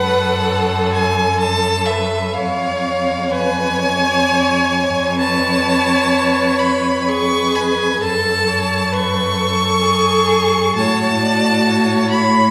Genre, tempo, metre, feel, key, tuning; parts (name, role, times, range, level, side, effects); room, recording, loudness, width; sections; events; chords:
classical, slow romantic movement for string quartet; 64 BPM; 3/4; rubato; F# minor; A4 = 444 Hz
rich violin; melody; 0.0-12.5 s; F#4 to C#5; -26 LUFS; equal
rich violin; second line; 0.0-12.5 s; E5 to C#6; -20 LUFS; equal
rich viola; accompaniment; 0.0-12.5 s; G#4 to D5; -22 LUFS; equal
rich cello; bass; 0.0-12.5 s; E#2 to A2; -22 LUFS; equal
wet recital hall reverb, RT60 1.6 s; recorded in a church or concert hall; -16 LUFS; mono
0.0-12.5 A section
0.0 F#m; 2.4 C#/E#; 5.2 C#7/E#; 8.0 F#m; 10.8 F#m/A